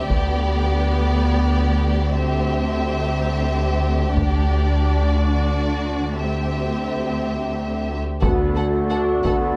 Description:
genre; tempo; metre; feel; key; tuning
cinematic, epic orchestral film score; 59 BPM (dotted quarters); 6/8; straight; D mixolydian; A4 = 436 Hz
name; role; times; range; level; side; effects
warm symphonic violin section; melody; 0.0-9.3 s; D5 to F#5; -32 LUFS; equal; none
warm symphonic violin section; second line; 0.0-9.3 s; F#4 to A4; -31 LUFS; equal; none
warm symphonic viola section; accompaniment; 0.0-9.6 s; A3 to D4; -30 LUFS; equal; none
rich symphonic cello section; bass; 0.0-9.6 s; D2; -27 LUFS; equal; none
warm symphonic double bass section; bass; 0.0-9.6 s; D2; -25 LUFS; equal; none
taiko ensemble; drums; 0.1-9.6 s; none; -25 LUFS; equal; none
clear French horn section; sustained chords; 8.2-9.6 s; F#4; -24 LUFS; equal; none
warm woodwind section; sustained chords; 8.2-9.6 s; A3 to D5; -32 LUFS; equal; none
warm tuba; bass; 8.2-9.6 s; D2; -29 LUFS; equal; none
room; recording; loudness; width
moderate scoring stage reverb, RT60 2.0 s; none; -21 LUFS; mono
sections
0.0-8.2 A section; 8.2-9.6 B section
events
build-up 0.0-8.2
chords
0.1 G/D; 2.1 C/D; 4.2 D; 6.2 C/D; 8.2 D

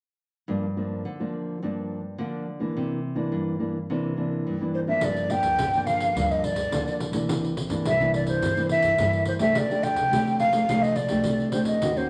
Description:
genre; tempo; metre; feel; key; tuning
samba and choro; 106 BPM; 4/4; straight; G minor; A4 = 440 Hz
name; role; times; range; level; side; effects
nylon-string guitar; accompaniment; 0.5-12.1 s; G2 to G4; -29 LUFS; equal; none
breathy concert flute; melody; 4.7-12.1 s; C5 to G5; -26 LUFS; equal; none
upright bass; bass; 5.0-12.1 s; G1 to G2; -36 LUFS; equal; none
pandeiro; percussion; 5.0-12.1 s; none; -34 LUFS; equal; none
room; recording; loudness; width
wet large studio reverb, RT60 1.1 s; none; -25 LUFS; mono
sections
0.5-5.0 A section; 5.0-12.1 B section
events
none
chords
0.5 Gm7; 2.8 C9; 5.0 Gm7; 7.3 C9; 9.6 F69

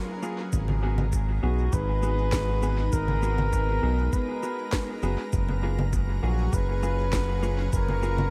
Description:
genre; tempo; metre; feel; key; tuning
ambient dub; 100 BPM; 4/4; straight; G# dorian; A4 = 440 Hz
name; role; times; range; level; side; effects
trumpet with bucket mute; melody; 0.0-8.3 s; F#4 to B4; -34 LUFS; equal; dub echo
soft additive organ-like pad; sustained chords; 0.0-8.3 s; F#3 to A#5; -39 LUFS; equal; ensemble chorus, built-in reverb
mellow electric guitar; stabs; 0.2-8.2 s; A#3 to G#4; -38 LUFS; equal; dub echo
electronic cabasa, congas and snare drum; drums; 0.2-8.3 s; none; -37 LUFS; equal; dub echo
round analog bass; bass; 0.5-8.3 s; F#1 to B1; -28 LUFS; equal; tube saturation
electronic kick drum; drums; 0.5-7.9 s; none; -30 LUFS; equal; none
room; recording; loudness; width
little or no reverb; vinyl crackle; -26 LUFS; mono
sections
0.0-8.3 A section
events
none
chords
0.0 F#maj9; 0.5 G#m7; 5.3 F#maj9

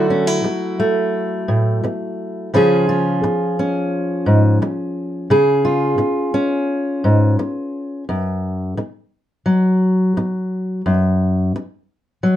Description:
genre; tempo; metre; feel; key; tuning
folk; 86 BPM; 4/4; straight; F# minor; A4 = 443 Hz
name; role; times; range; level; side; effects
fingerpicked steel-string acoustic guitar; solo; 0.0-12.4 s; F#2 to G#4; -16 LUFS; equal; none
room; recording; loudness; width
light reverb; dark, warm production; -16 LUFS; side -12 dB against mid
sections
0.0-8.1 A section; 8.1-12.4 B section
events
none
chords
0.0 Dadd9; 2.5 C#; 8.1 F#5; 10.9 N.C.

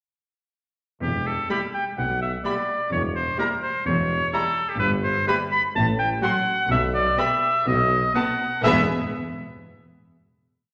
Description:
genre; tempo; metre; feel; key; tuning
cinematic, playful, whimsical film cue; 126 BPM; 4/4; straight; E minor; A4 = 445 Hz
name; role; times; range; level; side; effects
clear oboe; second line; 1.0-8.8 s; G4 to B5; -25 LUFS; equal; none
dark studio cello section; bass; 1.0-8.9 s; E2 to B2; -32 LUFS; equal; none
warm studio double bass section; bass; 1.0-8.9 s; E1 to B1; -35 LUFS; equal; none
warm tuba; bass; 1.0-8.8 s; E1 to B1; -34 LUFS; equal; none
warm studio violin section; melody; 1.5-8.9 s; E5 to C6; -34 LUFS; equal; none
warm studio violin section; second line; 1.5-8.9 s; E4 to G#4; -36 LUFS; equal; none
warm studio viola section; accompaniment; 1.5-8.9 s; F#3 to B3; -31 LUFS; equal; none
room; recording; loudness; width
wet scoring stage reverb, RT60 1.4 s; none; -23 LUFS; mono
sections
1.0-8.6 A section; 8.6-10.6 final chord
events
none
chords
1.0 Em; 2.9 E5; 4.8 Em/G (rootless); 5.8 F#m/A; 6.7 E5/B; 8.6 E5

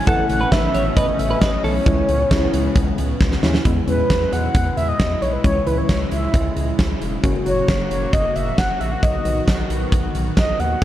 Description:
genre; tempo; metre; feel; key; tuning
synth-pop; 134 BPM; 4/4; straight; C# minor; A4 = 439 Hz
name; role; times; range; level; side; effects
mellow horn-like synth lead; melody; 0.0-10.8 s; B4 to F#5; -22 LUFS; equal; chorus, analog delay
lush unison pad; sustained chords; 0.0-10.8 s; B2 to F#4; -27 LUFS; equal; chorus
twelve-string electric guitar; second line; 0.1-1.7 s; A4 to C#5; -26 LUFS; right 1 dB; analog delay
warm analog keys; accompaniment; 0.1-10.8 s; D#3 to F#4; -26 LUFS; left 2 dB; chorus
round analog bass; bass; 0.1-10.8 s; E1 to E2; -24 LUFS; equal; none
huge arena drum kit; drums; 0.1-10.8 s; hi-hat, kick drum, snare drum; -20 LUFS; equal; none
room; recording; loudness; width
moderate lush hall reverb, RT60 2.1 s; dark, warm production; -16 LUFS; side -13 dB against mid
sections
0.0-3.7 A section; 3.7-10.8 B section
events
drum fill 3.2-3.7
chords
0.1 Asus2; 1.9 C#m7; 3.7 E; 5.4 C#m; 7.2 F#; 9.0 B

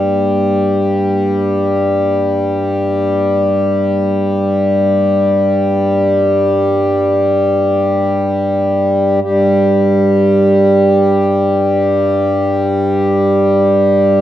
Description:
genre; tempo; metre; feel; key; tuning
world meditative, free-time meditation music; free time; none; none; G minor pentatonic; A4 = 440 Hz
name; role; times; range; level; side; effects
pedal harmonium; drone; 0.0-14.2 s; G2 to G3; -11 LUFS; equal; none
bronze singing bowl; texture; 0.0-0.8 s; Bb3; -33 LUFS; right 3 dB; none
room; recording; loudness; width
moderate scoring stage reverb, RT60 1.5 s; dark, warm production; -11 LUFS; side -12 dB against mid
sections
0.0-14.2 A section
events
none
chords
none

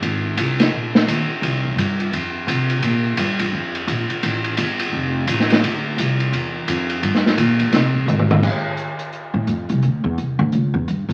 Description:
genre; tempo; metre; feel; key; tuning
jazz piano trio; 171 BPM; 4/4; swing 63% on 8ths; F major; A4 = 441 Hz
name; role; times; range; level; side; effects
upright bass; bass; 0.0-11.1 s; F1 to C3; -23 LUFS; equal; none
open jazz drum kit; drums; 0.0-11.1 s; crash cymbal, hi-hat, kick drum, ride cymbal, snare drum, toms; -22 LUFS; equal; none
room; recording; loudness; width
wet studio reverb, RT60 0.8 s; very old 78 rpm record, vinyl crackle; -20 LUFS; mono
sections
0.0-8.4 A section; 8.4-11.1 B section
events
drum fill 8.1-8.4; upright bass solo 8.4-11.1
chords
none

